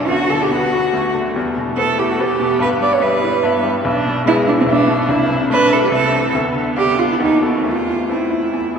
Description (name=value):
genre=quick classical-period movement for piano quartet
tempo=143 BPM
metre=3/4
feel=rubato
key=A minor from 3.9 s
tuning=A4 = 440 Hz
part: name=rich violin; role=melody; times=0.0-8.8 s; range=F#4 to A5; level=-25 LUFS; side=left 5 dB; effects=none
part: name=warm cello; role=second line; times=0.0-8.8 s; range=B3 to D5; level=-17 LUFS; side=right 3 dB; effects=none
part: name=bright grand piano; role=accompaniment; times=0.0-8.8 s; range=B1 to A4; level=-20 LUFS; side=left 2 dB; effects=none
part: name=clear viola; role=accompaniment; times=0.0-8.7 s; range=G3 to E4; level=-23 LUFS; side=right 1 dB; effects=none
room=wet cathedral reverb, RT60 4.6 s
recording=minimal, uncompressed stereo recording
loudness=-14 LUFS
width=side -6 dB against mid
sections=0.0-8.8 A section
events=none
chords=0.1 Bm/D; 1.4 Em; 2.6 Em/G; 3.9 E7/B; 5.1 Am/C; 6.3 Bdim/D; 7.2 D#dim; 7.7 Am/E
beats=| 0.09 0.52 0.94 | 1.36 1.78 2.20 | 2.62 3.03 3.44 | 3.86 4.27 4.69 | 5.10 5.52 5.93 | 6.35 6.77 7.21 | 7.65 8.10 8.55